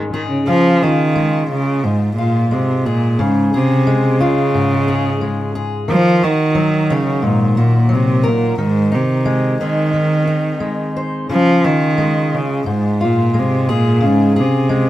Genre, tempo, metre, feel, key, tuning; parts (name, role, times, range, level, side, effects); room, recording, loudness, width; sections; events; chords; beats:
acoustic folk-pop ballad; 88 BPM; 4/4; straight; Db major; A4 = 439 Hz
fingerpicked steel-string acoustic guitar; accompaniment; 0.0-14.9 s; Ab2 to C5; -18 LUFS; left 2 dB
warm cello; melody; 0.5-14.9 s; Ab2 to F3; -15 LUFS; right 1 dB
wet small room reverb, RT60 0.5 s; -13 LUFS; side -14 dB against mid
0.5-14.9 A section
0.5 Db; 5.9 Ebm; 8.6 Ab; 11.3 Db
| 0.47 1.15 1.83 2.51 | 3.18 3.86 4.53 5.21 | 5.88 6.55 7.23 7.90 | 8.58 9.26 9.94 10.62 | 11.30 11.99 12.67 13.35 | 14.03 14.71